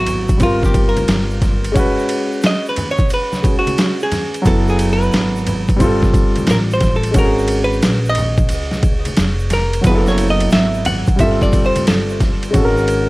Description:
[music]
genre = hip hop, jazz-hop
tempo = 89 BPM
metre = 4/4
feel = swing 66% on 16ths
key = unclear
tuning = A4 = 440 Hz
[part]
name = hollow-body jazz guitar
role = melody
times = 0.0-12.2 s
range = F4 to F#5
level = -21 LUFS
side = right 1 dB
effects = tape echo
[part]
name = dark grand piano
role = accompaniment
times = 0.0-13.1 s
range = F#3 to B4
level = -19 LUFS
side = equal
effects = none
[part]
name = upright bass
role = bass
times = 0.0-13.1 s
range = E#1 to C#2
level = -20 LUFS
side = equal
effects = none
[part]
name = boom bap sampler-style drum kit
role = drums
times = 0.1-13.1 s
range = hi-hat, kick drum, ride cymbal, snare drum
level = -17 LUFS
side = equal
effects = overdrive
[part]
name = congas and tube shaker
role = percussion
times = 0.1-13.1 s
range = none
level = -28 LUFS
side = equal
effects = none
[sound]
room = light reverb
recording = vinyl crackle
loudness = -13 LUFS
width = side -20 dB against mid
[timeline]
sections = 0.0-12.5 A section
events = hollow-body jazz guitar solo 0.0-12.5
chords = 0.4 Gm7; 1.8 G#m7; 4.5 F#m11; 5.8 G9sus4; 7.2 G#9sus4; 9.8 F#m11; 11.2 G9sus4; 12.5 G#9sus4

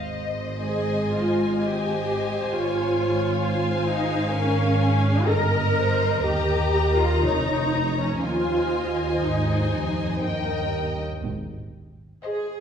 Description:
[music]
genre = classical, slow romantic movement for string orchestra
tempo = 59-69 BPM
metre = 3/4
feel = rubato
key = Ab major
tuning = A4 = 440 Hz
[part]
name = rich symphonic violin section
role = melody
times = 0.0-12.6 s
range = Eb5 to Bb5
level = -31 LUFS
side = left 6 dB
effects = none
[part]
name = warm symphonic violin section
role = second line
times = 0.0-12.6 s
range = Ab4 to F5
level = -29 LUFS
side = left 3 dB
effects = none
[part]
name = clear symphonic double bass section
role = bass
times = 0.0-12.1 s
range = F1 to Eb2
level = -29 LUFS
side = right 2 dB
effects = none
[part]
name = warm symphonic cello section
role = bass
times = 0.0-12.1 s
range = Eb2 to Ab2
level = -28 LUFS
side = right 2 dB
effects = none
[part]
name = rich symphonic viola section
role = accompaniment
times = 0.6-12.6 s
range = Db4 to Bb4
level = -25 LUFS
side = right 1 dB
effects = none
[sound]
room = wet recital hall reverb, RT60 1.5 s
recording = recorded in a church or concert hall, nothing above 10.5 kHz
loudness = -21 LUFS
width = side -8 dB against mid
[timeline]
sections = 0.0-12.6 A section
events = none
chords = 0.0 Ab; 2.5 Bbm7/Ab (rootless); 5.3 Eb/G; 7.2 Db/F; 8.2 Ab/Eb; 10.2 Eb; 11.2 Ab

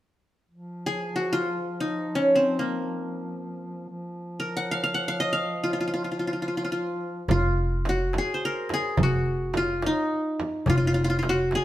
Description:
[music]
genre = Arabic maqam ensemble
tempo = free time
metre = none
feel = none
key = F maqam kurd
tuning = A4 = 440 Hz
[part]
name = dark duduk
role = drone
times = 0.5-7.3 s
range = F3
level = -36 LUFS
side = equal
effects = none
[part]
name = qanun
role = melody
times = 0.9-11.6 s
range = Bb3 to Gb5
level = -25 LUFS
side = equal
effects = none
[part]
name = upright bass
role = bass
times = 7.3-11.5 s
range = F1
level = -27 LUFS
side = equal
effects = none
[part]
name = darbuka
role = percussion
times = 7.3-11.6 s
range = none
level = -30 LUFS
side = left 2 dB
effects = none
[part]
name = frame drum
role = percussion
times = 7.3-11.6 s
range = none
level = -30 LUFS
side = right 2 dB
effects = none
[sound]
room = moderate stone room reverb, RT60 1.0 s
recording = band playing live in one room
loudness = -24 LUFS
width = side -14 dB against mid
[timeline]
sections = 0.5-7.3 A section; 7.3-11.6 B section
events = none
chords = none

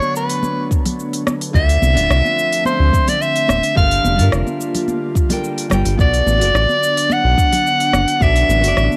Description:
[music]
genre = sunset chillout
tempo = 108 BPM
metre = 4/4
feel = straight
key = B minor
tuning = A4 = 439 Hz
[part]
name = bright soprano saxophone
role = melody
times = 0.0-9.0 s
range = B4 to F#5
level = -19 LUFS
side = equal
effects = cassette tape, analog delay
[part]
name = nylon-string guitar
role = accompaniment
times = 0.0-9.0 s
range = D3 to G5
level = -27 LUFS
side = equal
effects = cassette tape
[part]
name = airy breathy pad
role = sustained chords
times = 0.0-9.0 s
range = D3 to E5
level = -27 LUFS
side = equal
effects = chorus, cassette tape
[part]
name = deep house drum kit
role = drums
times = 0.0-9.0 s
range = hi-hat, rim click, shaker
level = -27 LUFS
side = equal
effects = cassette tape
[part]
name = congas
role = percussion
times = 0.0-9.0 s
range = none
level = -27 LUFS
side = equal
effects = none
[part]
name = electronic kick drum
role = drums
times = 0.7-8.3 s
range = none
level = -19 LUFS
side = equal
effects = cassette tape
[part]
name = round analog bass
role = bass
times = 1.5-8.9 s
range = D1 to G2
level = -18 LUFS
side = equal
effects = none
[sound]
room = moderate studio ambience, RT60 0.5 s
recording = home recording on cassette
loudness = -16 LUFS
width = mono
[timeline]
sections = 0.0-9.0 A section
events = none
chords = 0.0 Bm9; 1.5 Dm9; 3.8 Gm9; 6.0 Bm7

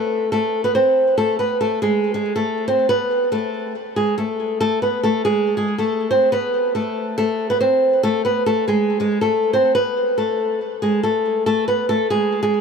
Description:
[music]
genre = hip hop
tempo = 140 BPM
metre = 4/4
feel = half-time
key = A harmonic minor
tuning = A4 = 440 Hz
[part]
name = flamenco guitar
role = solo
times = 0.0-12.6 s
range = G#3 to C5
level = -17 LUFS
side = equal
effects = ping-pong delay
[sound]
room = light reverb, studio reverb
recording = none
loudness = -17 LUFS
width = side -6 dB against mid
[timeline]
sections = 0.0-4.6 A section; 4.6-12.6 B section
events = none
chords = 0.0 Amadd9; 1.2 Ammaj7/G#; 6.3 Amadd9; 8.0 Amaj7(no3)/G#

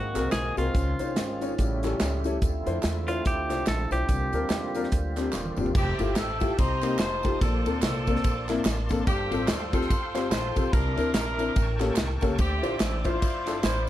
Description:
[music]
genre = uptempo gospel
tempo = 145 BPM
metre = 4/4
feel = swing 59% on 8ths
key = F major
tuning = A4 = 440 Hz
[part]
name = clean electric guitar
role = melody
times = 0.0-5.5 s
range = F4 to A4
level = -32 LUFS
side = right 1 dB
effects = none
[part]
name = warm baby grand piano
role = accompaniment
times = 0.0-13.6 s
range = G2 to C6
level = -30 LUFS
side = left 3 dB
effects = none
[part]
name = bright tonewheel organ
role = sustained chords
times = 0.0-13.9 s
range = C#3 to Eb6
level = -35 LUFS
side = right 2 dB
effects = fast rotary speaker, overdrive, chorus vibrato
[part]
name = mellow French horn section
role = sustained chords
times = 0.0-5.7 s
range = D4 to F5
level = -41 LUFS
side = right 1 dB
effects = none
[part]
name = upright bass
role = bass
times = 0.0-13.9 s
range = Eb1 to F2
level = -31 LUFS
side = equal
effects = none
[part]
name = natural country drum kit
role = drums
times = 0.2-13.7 s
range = crash cymbal, hi-hat, kick drum, ride cymbal, snare drum, toms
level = -28 LUFS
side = equal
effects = none
[part]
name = handclaps and tambourine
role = percussion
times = 0.2-13.9 s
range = none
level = -40 LUFS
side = right 2 dB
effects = none
[part]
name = warm horn section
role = melody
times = 5.8-13.9 s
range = C4 to C5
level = -30 LUFS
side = equal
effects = none
[sound]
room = light reverb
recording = none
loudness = -24 LUFS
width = side -13 dB against mid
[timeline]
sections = 0.0-5.8 A section; 5.8-13.9 B section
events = grand piano fill 5.1-5.8; drum fill 5.3-5.8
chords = 0.0 Ab9; 0.7 Dbmaj9; 1.6 A7; 2.4 Dm9; 4.1 C9sus4; 5.8 Fmaj9; 6.6 Cm7; 7.0 F9; 7.4 Bbmaj9; 9.1 G9sus4; 10.7 C9; 11.6 A7b9; 12.4 Dm9

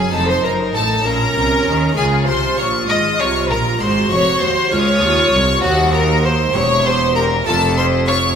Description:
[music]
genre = classical, baroque-style concerto movement with solo episodes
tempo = 65 BPM (dotted quarters)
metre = 6/8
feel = straight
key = unclear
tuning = A4 = 440 Hz
[part]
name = rich studio violin section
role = melody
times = 0.0-8.4 s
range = Gb5 to Eb6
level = -21 LUFS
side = left 3 dB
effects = none
[part]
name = rich violin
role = melody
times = 0.0-8.2 s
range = Gb4 to Eb5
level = -19 LUFS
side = left 1 dB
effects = none
[part]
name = warm studio violin section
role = second line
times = 0.0-8.4 s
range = Gb4 to Eb5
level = -21 LUFS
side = equal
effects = none
[part]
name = harpsichord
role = accompaniment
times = 0.0-8.3 s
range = C2 to G4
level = -27 LUFS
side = equal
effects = none
[part]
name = rich chamber viola section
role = accompaniment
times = 0.0-8.2 s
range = Db4 to G4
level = -23 LUFS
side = right 2 dB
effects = none
[part]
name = rich chamber double bass section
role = bass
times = 0.0-8.3 s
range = E1 to Eb2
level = -22 LUFS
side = right 2 dB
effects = none
[part]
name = rich studio cello section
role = bass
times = 0.0-8.3 s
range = C2 to Eb3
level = -21 LUFS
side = right 1 dB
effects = none
[sound]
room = wet scoring stage reverb, RT60 1.5 s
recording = minimal, uncompressed stereo recording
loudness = -13 LUFS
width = side -7 dB against mid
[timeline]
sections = 0.0-8.4 A section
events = none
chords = 0.1 F7; 1.0 Bbm; 2.0 Db; 3.8 Ab5; 4.7 Db; 5.6 Cdim/Eb; 6.5 Edim; 7.5 F5

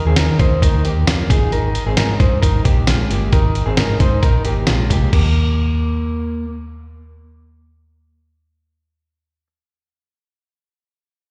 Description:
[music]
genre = jangly indie pop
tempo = 133 BPM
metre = 4/4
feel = straight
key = Eb major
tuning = A4 = 442 Hz
[part]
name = electric guitar through a small old amp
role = arpeggios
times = 0.0-6.4 s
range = Ab3 to C5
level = -24 LUFS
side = equal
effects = slapback echo, tape echo
[part]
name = vintage muted fingered electric bass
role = bass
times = 0.1-9.5 s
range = G1 to Eb3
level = -20 LUFS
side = equal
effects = none
[part]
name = dusty soul sampler-style drum kit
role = drums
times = 0.2-5.2 s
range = crash cymbal, hi-hat, kick drum, snare drum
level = -19 LUFS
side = equal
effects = none
[sound]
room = light reverb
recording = live gig heard through the venue's PA, recital hall reverb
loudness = -16 LUFS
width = mono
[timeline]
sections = 0.0-5.1 A section; 5.1-8.7 B section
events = none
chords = 0.0 Ebadd9; 1.3 Absus2; 5.1 Eb5

